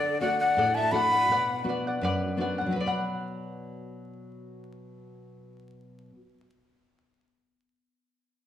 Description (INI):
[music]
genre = andean folk, Andean ensemble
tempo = 83 BPM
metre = 2/4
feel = straight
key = B minor pentatonic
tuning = A4 = 440 Hz
[part]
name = breathy large quena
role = melody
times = 0.0-1.6 s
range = D5 to B5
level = -24 LUFS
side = left 1 dB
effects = none
[part]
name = breathy pan flute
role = second line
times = 0.0-1.6 s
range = A4 to F#5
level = -33 LUFS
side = left 2 dB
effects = none
[part]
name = charango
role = accompaniment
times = 0.0-6.4 s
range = A4 to F#5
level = -32 LUFS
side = equal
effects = none
[part]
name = nylon-string guitar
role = accompaniment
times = 0.0-6.3 s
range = F#2 to B5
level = -33 LUFS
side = left 2 dB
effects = none
[sound]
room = wet recital hall reverb, RT60 1.3 s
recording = vinyl crackle, small room ambience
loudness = -24 LUFS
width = side -10 dB against mid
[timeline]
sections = 0.0-2.7 A section; 2.7-5.6 B section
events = none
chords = 0.0 D; 1.3 Bm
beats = 0.56 | 1.28 2.01 | 2.73 3.45 | 4.17 4.89